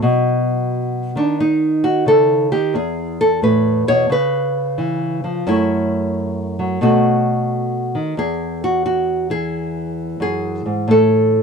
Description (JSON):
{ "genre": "solo jazz", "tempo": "88 BPM", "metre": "4/4", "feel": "swing 67% on 8ths", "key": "E major", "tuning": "A4 = 440 Hz", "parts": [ { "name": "nylon-string guitar", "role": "solo", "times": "0.0-11.4 s", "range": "E2 to C#5", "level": "-15 LUFS", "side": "equal", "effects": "none" } ], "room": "light reverb", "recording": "dry, close 1970s-style studio recording", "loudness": "-15 LUFS", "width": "side -5 dB against mid", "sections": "0.0-8.2 A section; 8.2-11.4 B section", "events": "nylon-string guitar solo 0.0-8.2", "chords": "0.0 Badd9; 2.7 E5; 4.1 C#7#9; 5.4 F#m7; 6.8 B9; 8.2 Eadd9; 10.9 A5", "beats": "| 0.02 0.70 1.38 2.05 | 2.73 3.41 4.09 4.76 | 5.44 6.12 6.80 7.48 | 8.16 8.83 9.51 10.19 | 10.87" }